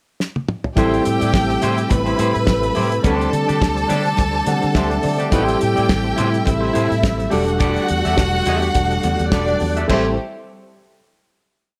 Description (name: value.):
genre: disco.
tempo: 105 BPM.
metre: 4/4.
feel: swing 56% on 16ths.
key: A dorian.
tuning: A4 = 439 Hz.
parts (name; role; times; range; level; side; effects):
damped 70s drum kit; drums; 0.2-10.0 s; crash cymbal, hi-hat, kick drum, snare drum, toms; -23 LUFS; equal; none.
rich chamber violin section; second line; 0.8-10.2 s; A3 to B5; -24 LUFS; equal; none.
electric guitar at the edge of break-up; accompaniment; 0.8-10.1 s; D4 to E5; -27 LUFS; equal; none.
mellow tine electric piano; accompaniment; 0.8-10.2 s; G3 to F#5; -25 LUFS; equal; none.
tonewheel organ; sustained chords; 0.8-10.2 s; C3 to F#4; -28 LUFS; equal; chorus vibrato, slow rotary speaker.
vintage muted fingered electric bass; bass; 0.8-10.2 s; E1 to D3; -25 LUFS; equal; none.
congas; percussion; 0.8-10.2 s; none; -31 LUFS; equal; none.
room: light reverb, small room ambience.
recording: none.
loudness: -18 LUFS.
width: mono.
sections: 0.0-0.8 pickup bar; 0.8-9.9 verse; 9.9-11.8 final chord.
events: drum fill 0.2-0.8; tine electric piano fill 4.2-5.3.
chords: 0.0 N.C.; 0.8 Am7; 3.0 D7sus4; 5.3 Am7; 7.3 Em11; 9.9 Am7.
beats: 0.18 | 0.76 1.33 1.90 2.47 | 3.04 3.62 4.18 4.76 | 5.33 5.90 6.47 7.04 | 7.61 8.18 8.75 9.33 | 9.90.